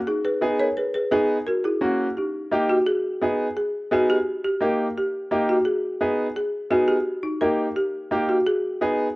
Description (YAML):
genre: latin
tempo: 171 BPM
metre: 4/4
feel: straight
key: G# harmonic minor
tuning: A4 = 440 Hz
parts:
  - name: folk marimba with medium hard mallets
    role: melody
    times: 0.1-9.1 s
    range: D#4 to C#5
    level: -23 LUFS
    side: equal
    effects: none
  - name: bright upright piano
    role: accompaniment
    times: 0.4-9.1 s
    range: A#3 to G#4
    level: -23 LUFS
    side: equal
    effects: cassette tape
room: wet spring reverb, RT60 1.4 s, small room ambience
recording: home recording on cassette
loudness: -20 LUFS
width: side -21 dB against mid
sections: 0.0-2.9 A section; 2.9-9.2 B section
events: none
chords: 0.1 G#m; 1.5 F#; 2.2 D#; 2.9 G#m; 4.3 D#; 5.7 G#m; 7.1 D#; 8.5 G#m